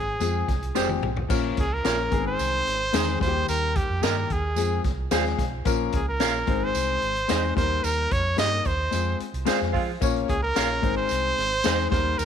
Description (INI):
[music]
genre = uptempo 1960s-style soul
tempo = 110 BPM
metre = 4/4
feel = straight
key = Ab major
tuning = A4 = 440 Hz
[part]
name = clear trumpet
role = melody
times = 0.0-12.2 s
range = G4 to Eb5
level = -26 LUFS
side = right 2 dB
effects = none
[part]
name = fingered electric bass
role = bass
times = 0.0-12.2 s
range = F1 to F3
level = -29 LUFS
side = right 2 dB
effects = none
[part]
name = warm upright piano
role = accompaniment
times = 0.2-12.2 s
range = Eb3 to Db5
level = -28 LUFS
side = left 10 dB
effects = none
[part]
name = swinging big-band drum kit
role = drums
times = 0.2-12.2 s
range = crash cymbal, hi-hat, kick drum, snare drum, toms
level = -29 LUFS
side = left 1 dB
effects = none
[part]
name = tambourine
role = percussion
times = 0.2-12.2 s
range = none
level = -38 LUFS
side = right 15 dB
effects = none
[part]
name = electric guitar through a small old amp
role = stabs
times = 0.8-11.8 s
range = Eb4 to F5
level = -31 LUFS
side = right 13 dB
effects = none
[part]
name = dark saxophone section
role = second line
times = 9.5-9.9 s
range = Ab3 to F4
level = -32 LUFS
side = right 11 dB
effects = none
[sound]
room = light reverb, small room ambience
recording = 1960s-style stereo with parts hard left and right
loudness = -22 LUFS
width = side -8 dB against mid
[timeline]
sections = 0.0-1.3 A section; 1.3-12.2 B section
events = drum fill 0.8-1.3; band accent 7.8-10.0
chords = 0.0 Fm; 1.3 Bbm; 2.1 Ab; 3.2 Eb; 4.6 Fm; 5.7 Bbm; 6.5 Ab; 7.6 Eb; 8.9 Fm; 10.0 Bbm; 10.8 Ab